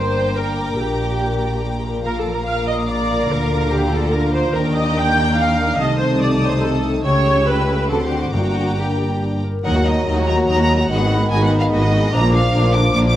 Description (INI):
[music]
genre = classical, dramatic, fast romantic movement for symphony orchestra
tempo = 144 BPM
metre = 3/4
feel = straight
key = G minor, Eb minor from 9.6 s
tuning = A4 = 440 Hz
[part]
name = rich studio violin section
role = melody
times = 0.0-13.2 s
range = Eb5 to E6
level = -27 LUFS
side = equal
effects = none
[part]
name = clear studio violin section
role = second line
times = 0.0-13.1 s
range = D4 to C6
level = -29 LUFS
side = left 1 dB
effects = none
[part]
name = flute section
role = second line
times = 0.0-13.2 s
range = F#5 to G6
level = -27 LUFS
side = left 1 dB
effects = none
[part]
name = rich studio viola section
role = accompaniment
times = 0.0-13.1 s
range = D3 to G5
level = -22 LUFS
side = right 1 dB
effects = none
[part]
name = warm French horn section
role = sustained chords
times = 0.0-13.2 s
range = A3 to G4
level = -25 LUFS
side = left 2 dB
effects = none
[part]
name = concert harp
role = arpeggios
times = 0.0-13.2 s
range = G2 to Bb5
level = -26 LUFS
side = left 4 dB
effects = none
[part]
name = dark symphonic cello section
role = bass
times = 0.0-13.2 s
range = Eb2 to Eb3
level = -23 LUFS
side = right 1 dB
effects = none
[part]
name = rich symphonic double bass section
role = bass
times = 0.0-13.2 s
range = G1 to Eb2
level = -22 LUFS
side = right 1 dB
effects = none
[part]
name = timpani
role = percussion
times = 0.0-0.1, 8.3-9.0 s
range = G2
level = -28 LUFS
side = equal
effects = none
[part]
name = mellow bassoon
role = accompaniment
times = 9.6-13.2 s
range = Eb3 to Gb3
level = -24 LUFS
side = right 1 dB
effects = none
[sound]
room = moderate recital hall reverb, RT60 1.6 s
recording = close, detailed microphones, vinyl crackle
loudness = -15 LUFS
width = side -12 dB against mid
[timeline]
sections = 0.0-9.6 A section; 9.6-13.2 B section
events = none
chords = 0.0 Gm; 0.8 Gm/Bb; 2.0 Bb; 3.3 Bb/D; 4.5 Ebmaj7; 5.8 Adim/C; 7.1 A7/C#; 7.9 D7; 8.3 Gm; 9.6 Ebm; 10.9 Abm7; 12.1 Bb